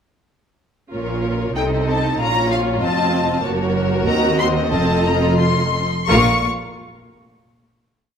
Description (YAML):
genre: quick classical-period movement for string orchestra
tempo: 84-97 BPM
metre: 2/4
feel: rubato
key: Bb minor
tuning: A4 = 441 Hz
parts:
  - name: rich chamber violin section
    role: second line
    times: 0.9-6.5 s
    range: F4 to F5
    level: -22 LUFS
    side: left 4 dB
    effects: none
  - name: rich chamber viola section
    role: accompaniment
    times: 0.9-6.5 s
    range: Bb3 to Gb4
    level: -23 LUFS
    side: right 3 dB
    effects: none
  - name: rich chamber cello section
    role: bass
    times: 0.9-6.5 s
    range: Eb2 to C3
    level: -23 LUFS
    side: right 2 dB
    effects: none
  - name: warm chamber double bass section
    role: bass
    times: 0.9-6.5 s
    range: F1 to Eb2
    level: -23 LUFS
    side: right 3 dB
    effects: none
  - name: rich chamber violin section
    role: melody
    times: 1.6-6.5 s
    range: F5 to Db6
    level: -21 LUFS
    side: left 4 dB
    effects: none
room: moderate recital hall reverb, RT60 1.7 s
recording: none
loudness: -16 LUFS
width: side -7 dB against mid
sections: 0.9-6.1 theme; 6.1-7.4 final chord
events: slowing down 2.8-6.1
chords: 0.9 Bbm; 1.6 Adim/C; 2.2 Bbm; 2.8 F7; 3.4 Gb; 4.1 Cm7b5/Eb; 4.7 F7; 6.1 Bb5